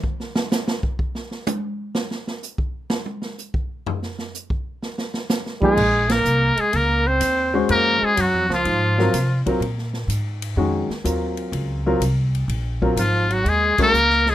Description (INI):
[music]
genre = jazz, small-group swing and bop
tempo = 125 BPM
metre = 4/4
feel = swing 68% on 8ths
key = Bb minor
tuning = A4 = 440 Hz
[part]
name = swinging big-band drum kit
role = drums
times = 0.0-14.3 s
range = crash cymbal, hi-hat, kick drum, ride cymbal, snare drum, toms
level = -26 LUFS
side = right 1 dB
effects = none
[part]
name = trumpet with metal mute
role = melody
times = 5.6-9.4, 13.0-14.3 s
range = F4 to C5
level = -19 LUFS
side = left 2 dB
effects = none
[part]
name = brilliant trombone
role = second line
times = 5.6-9.4, 13.0-14.3 s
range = F3 to C4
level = -23 LUFS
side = right 2 dB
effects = none
[part]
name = warm baby grand piano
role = accompaniment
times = 5.6-13.9 s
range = Eb3 to C5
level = -22 LUFS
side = left 2 dB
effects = none
[part]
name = upright bass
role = bass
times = 5.8-14.3 s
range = Ab1 to C3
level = -23 LUFS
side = equal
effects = none
[sound]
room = little or no reverb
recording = close, detailed microphones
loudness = -19 LUFS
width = side -13 dB against mid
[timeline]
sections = 0.0-5.8 A section; 5.8-14.3 B section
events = trombone solo 0.0-5.8; drum solo 0.0-5.8; band accent 6.0, 13.7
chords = 0.0 N.C.; 3.9 Bb5; 5.8 Bbm7; 13.5 Ebm7